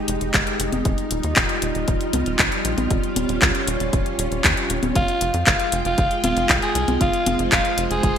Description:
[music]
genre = italo disco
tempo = 117 BPM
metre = 4/4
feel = straight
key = F minor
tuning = A4 = 439 Hz
[part]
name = string machine, full ensemble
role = sustained chords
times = 0.0-8.2 s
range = G3 to G5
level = -25 LUFS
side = right 1 dB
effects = ensemble chorus
[part]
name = tight sequencer bass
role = bass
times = 0.1-8.1 s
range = Eb1 to F2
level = -26 LUFS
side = equal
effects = tube saturation
[part]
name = house drum kit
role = drums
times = 0.1-8.1 s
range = congas, handclaps, hi-hat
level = -22 LUFS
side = left 1 dB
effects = gated reverb
[part]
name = electronic kick drum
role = drums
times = 0.3-8.1 s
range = none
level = -23 LUFS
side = equal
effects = none
[part]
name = raspy alto saxophone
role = melody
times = 5.0-8.2 s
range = F4 to Ab4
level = -22 LUFS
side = equal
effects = ping-pong delay
[sound]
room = moderate lush hall reverb, RT60 2.0 s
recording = bright 1980s-style digital production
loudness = -18 LUFS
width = side -8 dB against mid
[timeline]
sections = 0.0-8.2 A section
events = none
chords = 0.0 Fmadd9; 0.9 Ebadd9; 5.0 Fmadd9

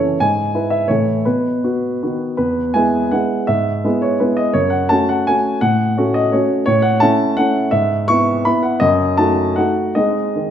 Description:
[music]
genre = classical, romantic triple-time dance for piano with dotted rhythms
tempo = 142-191 BPM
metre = 3/4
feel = rubato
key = E major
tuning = A4 = 440 Hz
[part]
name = warm grand piano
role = solo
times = 0.0-10.5 s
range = E2 to C#6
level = -14 LUFS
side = equal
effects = none
[sound]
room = wet recital hall reverb, RT60 1.5 s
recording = minimal, uncompressed stereo recording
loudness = -14 LUFS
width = side -9 dB against mid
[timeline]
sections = 0.0-2.4 A section; 2.4-10.5 B section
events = none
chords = 0.2 E/G#; 0.9 A; 1.2 B; 2.4 E; 3.5 E/G#; 4.5 F#m; 5.6 F#m/A; 6.7 A; 7.7 E/G#; 8.8 D#dim/F#; 10.0 G#

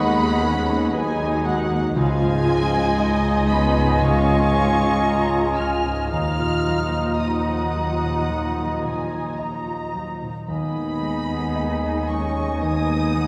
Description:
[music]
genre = cinematic, emotional film score for orchestra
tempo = 54-59 BPM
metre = 4/4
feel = rubato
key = Eb minor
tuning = A4 = 440 Hz
[part]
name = muted studio violin section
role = melody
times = 0.0-13.3 s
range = Ab5 to F6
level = -32 LUFS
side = equal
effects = none
[part]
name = dark clarinet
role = second line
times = 0.0-13.3 s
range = Eb4 to Ab4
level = -34 LUFS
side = equal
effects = none
[part]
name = mellow silver concert flute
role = second line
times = 0.0-13.3 s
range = Ab5 to Cb6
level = -31 LUFS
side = equal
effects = none
[part]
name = muted studio violin section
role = second line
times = 0.0-13.3 s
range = Eb5 to Bb5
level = -33 LUFS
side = equal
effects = none
[part]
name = warm oboe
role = second line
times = 0.0-13.3 s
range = Eb5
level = -32 LUFS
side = equal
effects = none
[part]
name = dark concert grand piano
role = accompaniment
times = 0.0-13.3 s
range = Db2 to Eb5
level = -29 LUFS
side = equal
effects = none
[part]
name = muted studio viola section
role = accompaniment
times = 0.0-13.3 s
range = F3 to F4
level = -30 LUFS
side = equal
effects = none
[part]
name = warm French horn section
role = sustained chords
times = 0.0-13.3 s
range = Ab3 to F4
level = -32 LUFS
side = equal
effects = none
[part]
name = muted studio cello section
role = bass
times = 0.0-13.3 s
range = Db2 to Eb2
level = -30 LUFS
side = equal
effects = none
[part]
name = muted studio double bass section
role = bass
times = 0.0-13.3 s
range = Db2 to Eb2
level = -30 LUFS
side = equal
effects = none
[sound]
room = wet scoring stage reverb, RT60 2.0 s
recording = recorded in a church or concert hall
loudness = -21 LUFS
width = mono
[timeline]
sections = 0.0-13.3 A section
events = none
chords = 0.0 Abm/Eb; 2.0 Dbadd9; 6.1 Ebmadd9; 10.5 Abm/Eb

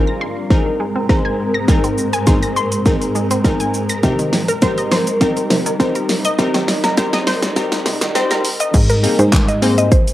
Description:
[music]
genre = dance-pop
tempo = 102 BPM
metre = 4/4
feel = straight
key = unclear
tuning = A4 = 436 Hz
[part]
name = wavetable chord stab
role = accompaniment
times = 0.0-10.0 s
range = Bb3 to C5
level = -20 LUFS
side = left 1 dB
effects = sidechain pumping, cassette tape
[part]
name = granular cloud pad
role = sustained chords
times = 0.0-8.7 s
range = Ab2 to Bb4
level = -22 LUFS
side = equal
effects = built-in reverb, sidechain pumping, cassette tape
[part]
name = wide unison pluck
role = arpeggios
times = 0.1-8.7 s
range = C3 to Bb6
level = -22 LUFS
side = equal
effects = flanger, sidechain pumping, cassette tape, analog delay
[part]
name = pop drum kit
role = drums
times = 0.5-10.1 s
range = crash cymbal, handclaps, hi-hat, kick drum, shaker, snare drum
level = -16 LUFS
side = equal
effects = cassette tape
[part]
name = plucky analog bass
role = bass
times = 8.7-9.9 s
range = Ab2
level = -15 LUFS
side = equal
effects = sidechain pumping
[part]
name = mallet-like synth pluck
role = melody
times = 8.9-10.1 s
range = Bb4 to Eb5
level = -19 LUFS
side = equal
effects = chorus, sidechain pumping, cassette tape
[sound]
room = moderate spring reverb, RT60 2.1 s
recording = home recording on cassette, high-pass filter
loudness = -14 LUFS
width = side -14 dB against mid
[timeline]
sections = 0.0-8.7 A section; 8.7-10.1 B section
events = build-up 0.0-8.7; drum fill 0.0-8.7; filter sweep 0.0-8.7; drop 8.7-10.1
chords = 0.0 Abadd9; 4.0 Cm7; 8.7 Abadd9

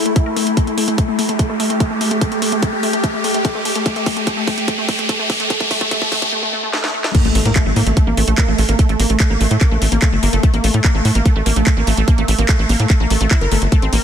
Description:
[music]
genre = psychedelic trance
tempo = 146 BPM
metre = 4/4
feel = straight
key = unclear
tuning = A4 = 438 Hz
[part]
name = evolving wavetable pad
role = sustained chords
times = 0.0-6.3 s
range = A3 to G4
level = -23 LUFS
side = left 1 dB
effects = phaser, built-in reverb, sidechain pumping
[part]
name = riser and impact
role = sound effects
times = 0.0-8.8 s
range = none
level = -22 LUFS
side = equal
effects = none
[part]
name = wide unison pluck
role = riff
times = 0.1-14.0 s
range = A3 to Bb4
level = -20 LUFS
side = moving between left 4 dB and right 4 dB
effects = auto-pan, sidechain pumping, ping-pong delay
[part]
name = drum and bass drum kit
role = drums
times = 0.1-14.0 s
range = crash cymbal, handclaps, hi-hat, snare drum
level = -22 LUFS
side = equal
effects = none
[part]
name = electronic kick drum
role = drums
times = 0.2-13.8 s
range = none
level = -15 LUFS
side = equal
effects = none
[part]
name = tight sequencer bass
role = bass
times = 7.2-14.0 s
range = G1 to A2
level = -16 LUFS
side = equal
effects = none
[sound]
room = light reverb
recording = dense, heavily limited modern master, high-pass filter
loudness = -14 LUFS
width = side -8 dB against mid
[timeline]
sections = 0.0-7.1 A section; 7.1-14.0 B section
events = build-up 0.0-7.1; riser 0.0-6.3; filter sweep on synth arpeggio sound 0.0-7.1; filter sweep 0.0-7.1; drum fill 0.6-6.3, 6.7-7.1; drop 7.1-14.0; impact 7.1-8.8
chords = 0.0 A5

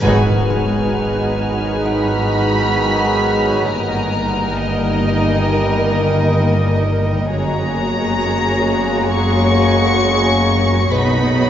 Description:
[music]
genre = cinematic, suspense film score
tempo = 66 BPM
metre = 4/4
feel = straight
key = G# minor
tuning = A4 = 441 Hz
[part]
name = warm chamber violin section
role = melody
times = 0.0-11.5 s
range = D#5 to C#6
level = -22 LUFS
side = left 2 dB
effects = none
[part]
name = warm chamber violin section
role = second line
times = 0.0-11.5 s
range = F#4 to D#5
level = -23 LUFS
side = equal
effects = none
[part]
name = warm chamber viola section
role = accompaniment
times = 0.0-11.5 s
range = G#3 to F#4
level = -22 LUFS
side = left 1 dB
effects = none
[part]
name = clear trombone section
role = sustained chords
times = 0.0-11.5 s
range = C#3 to G#3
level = -24 LUFS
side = right 1 dB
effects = none
[part]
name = deep dark ambient pad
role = sustained chords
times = 0.0-11.5 s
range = F#4 to B5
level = -26 LUFS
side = left 1 dB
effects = chorus, built-in reverb
[part]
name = warm French horn section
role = sustained chords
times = 0.0-11.5 s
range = G3 to G#4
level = -24 LUFS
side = equal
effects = none
[part]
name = dark chamber cello section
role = bass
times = 0.0-11.5 s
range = F#2 to B2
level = -23 LUFS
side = right 1 dB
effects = none
[part]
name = dark studio double bass section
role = bass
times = 0.0-11.5 s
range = F#1 to B1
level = -23 LUFS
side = right 1 dB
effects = none
[part]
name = metallic inharmonic drone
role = drone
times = 0.0-11.5 s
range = F#1 to B1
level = -25 LUFS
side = equal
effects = chorus, built-in reverb
[part]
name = timpani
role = percussion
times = 0.0-1.4 s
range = G#2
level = -25 LUFS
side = right 1 dB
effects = none
[part]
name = reverse cymbal and impact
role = sound effects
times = 0.0-3.7 s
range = none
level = -26 LUFS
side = equal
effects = none
[part]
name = warm chamber violin section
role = texture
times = 0.0-11.5 s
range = G#5 to A#6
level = -30 LUFS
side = left 4 dB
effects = none
[part]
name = music box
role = texture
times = 0.5-4.5, 10.9-11.5 s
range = D#4 to G#5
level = -30 LUFS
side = left 3 dB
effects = none
[sound]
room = wet church reverb, RT60 3.4 s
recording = recorded in a church or concert hall, nothing above 7.6 kHz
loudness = -14 LUFS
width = side -10 dB against mid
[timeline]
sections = 0.0-11.5 A section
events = band accent 0.0-0.9; impact 0.0-3.7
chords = 0.0 G#m7; 3.7 D#/G; 7.3 F#add9; 10.9 B

